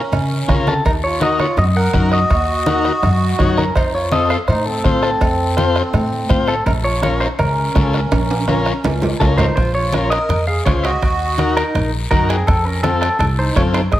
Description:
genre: latin, cumbia.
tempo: 165 BPM.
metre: 4/4.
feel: straight.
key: Bb harmonic minor, Bb minor from 9.6 s.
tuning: A4 = 440 Hz.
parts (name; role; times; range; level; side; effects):
clean electric guitar; melody; 0.0-14.0 s; Ab4 to Gb5; -21 LUFS; equal; spring reverb.
accordion; second line; 0.0-14.0 s; C4 to Bb4; -24 LUFS; right 2 dB; light tremolo tuning.
upright bass; bass; 0.1-14.0 s; Bb1 to Db3; -19 LUFS; equal; none.
bombo; percussion; 0.1-14.0 s; none; -21 LUFS; right 1 dB; none.
congas; percussion; 0.1-14.0 s; none; -24 LUFS; left 1 dB; none.
cowbell and timbales; percussion; 0.1-14.0 s; none; -27 LUFS; right 3 dB; none.
guiro; percussion; 0.1-14.0 s; none; -32 LUFS; left 5 dB; none.
overdriven combo organ; accompaniment; 0.5-13.8 s; C4 to Db5; -21 LUFS; left 4 dB; none.
room: light reverb.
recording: none.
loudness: -14 LUFS.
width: side -14 dB against mid.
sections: 0.0-9.6 A section; 9.6-14.0 B section.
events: drum fill 8.1-9.6.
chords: 0.0 Bbm; 0.9 Ebm; 3.8 F; 6.7 Bbm; 11.0 Ebm; 12.5 F.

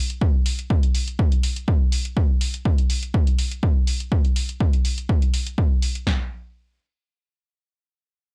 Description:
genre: piano house.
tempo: 123 BPM.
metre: 4/4.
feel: straight.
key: none.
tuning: none.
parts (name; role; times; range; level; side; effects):
electronic hi-hat; drums; 0.1-6.0 s; none; -32 LUFS; equal; none.
punchy analog drum machine; drums; 0.2-6.2 s; kick drum, snare drum, toms; -22 LUFS; equal; none.
room: little or no reverb.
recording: dry, gritty hardware recording, cassette tape.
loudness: -22 LUFS.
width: mono.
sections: 0.0-6.1 A section; 6.1-8.3 B section.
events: none.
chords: none.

